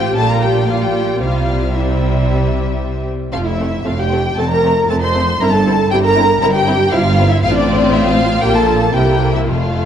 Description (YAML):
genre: quick classical-period movement for string orchestra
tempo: 116 BPM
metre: 4/4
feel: rubato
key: unclear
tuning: A4 = 436 Hz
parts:
  - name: warm studio violin section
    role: melody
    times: 0.0-9.9 s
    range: D5 to C6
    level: -19 LUFS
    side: left 2 dB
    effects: none
  - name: rich studio violin section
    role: second line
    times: 0.0-9.9 s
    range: G3 to F4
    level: -20 LUFS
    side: left 3 dB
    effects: none
  - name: rich studio viola section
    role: accompaniment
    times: 0.0-9.9 s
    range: D4 to C5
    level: -19 LUFS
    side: right 1 dB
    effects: none
  - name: rich studio cello section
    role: bass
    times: 0.0-9.9 s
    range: F2 to C3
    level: -20 LUFS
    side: right 2 dB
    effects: none
  - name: rich studio double bass section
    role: bass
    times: 0.0-9.9 s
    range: F1 to C2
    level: -18 LUFS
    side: right 2 dB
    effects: none
room: wet scoring stage reverb, RT60 2.2 s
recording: dark, warm production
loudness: -12 LUFS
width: side -9 dB against mid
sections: 0.0-9.9 A section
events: none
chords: 0.2 Gm7/Bb; 1.2 C; 3.3 F; 5.4 C/G; 7.4 F/A; 8.4 Gm9/Bb; 8.9 C7